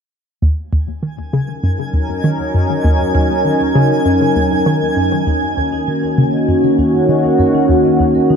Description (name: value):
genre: ambient, sequencer-driven space music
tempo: 99 BPM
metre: 4/4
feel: straight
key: Eb minor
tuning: A4 = 439 Hz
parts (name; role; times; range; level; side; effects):
- sweeping resonant pad; sustained chords; 0.4-8.4 s; Eb3 to Bb4; -14 LUFS; equal; chorus
- hollow square pluck; riff; 0.4-8.4 s; Eb2 to Eb3; -17 LUFS; equal; chorus, ping-pong delay
- twinkling granular texture; texture; 1.3-5.3 s; Ab5; -23 LUFS; right 3 dB; built-in reverb
- vibraphone with soft mallets; arpeggios; 5.3-8.4 s; Eb4 to Eb5; -27 LUFS; right 4 dB; auto-pan, ping-pong delay
- analog drone; bass; 6.3-8.4 s; Eb2; -36 LUFS; left 2 dB; none
room: moderate huge ambient reverb, RT60 9.1 s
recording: none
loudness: -12 LUFS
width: side -6 dB against mid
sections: 0.4-5.3 A section; 5.3-8.4 B section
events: fade-in on analog synth pad 0.4-5.3; fade-in on synth texture 0.4-5.3; filter sweep on synth arpeggio sound 0.4-5.3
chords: 0.4 Ebm7